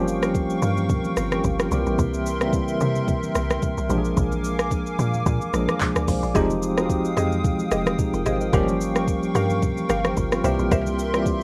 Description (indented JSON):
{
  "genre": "amapiano",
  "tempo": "110 BPM",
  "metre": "4/4",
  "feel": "swing 55% on 16ths",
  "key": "F minor",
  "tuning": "A4 = 441 Hz",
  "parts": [
    { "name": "tine electric piano", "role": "accompaniment", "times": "0.0-11.4 s", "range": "Db3 to Ab5", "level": "-27 LUFS", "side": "equal", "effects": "medium tremolo" },
    { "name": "hollow soft pad", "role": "sustained chords", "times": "0.0-11.4 s", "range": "Ab3 to Eb6", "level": "-32 LUFS", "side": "equal", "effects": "chorus, sidechain pumping" },
    { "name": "woody log drum bass", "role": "bass", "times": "0.0-11.4 s", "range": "F1 to C3", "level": "-29 LUFS", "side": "equal", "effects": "none" },
    { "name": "smooth R&B drum kit", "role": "drums", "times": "0.1-11.4 s", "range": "handclaps, hi-hat, kick drum, rim click, shaker", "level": "-27 LUFS", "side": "equal", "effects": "none" },
    { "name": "congas", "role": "percussion", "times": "0.6-11.0 s", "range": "none", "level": "-36 LUFS", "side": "equal", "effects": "none" },
    { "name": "mallet-like synth pluck", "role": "stabs", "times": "6.3-11.4 s", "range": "G4 to F5", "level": "-29 LUFS", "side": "equal", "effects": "chorus, slapback echo" }
  ],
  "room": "moderate studio reverb, RT60 0.5 s",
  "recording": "rough home demo mix, vinyl crackle",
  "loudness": "-23 LUFS",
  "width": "mono",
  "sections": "0.0-11.4 A section",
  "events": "none",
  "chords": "0.0 Gm7b5; 1.7 C7; 3.9 Bb7; 6.4 Fm9; 8.5 Gm7b5; 10.4 C7",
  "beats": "0.35 0.90 1.44 | 1.99 2.53 3.08 3.62 | 4.17 4.71 5.26 5.80 | 6.35 6.90 7.44 7.99 | 8.53 9.08 9.62 10.17 | 10.71 11.26"
}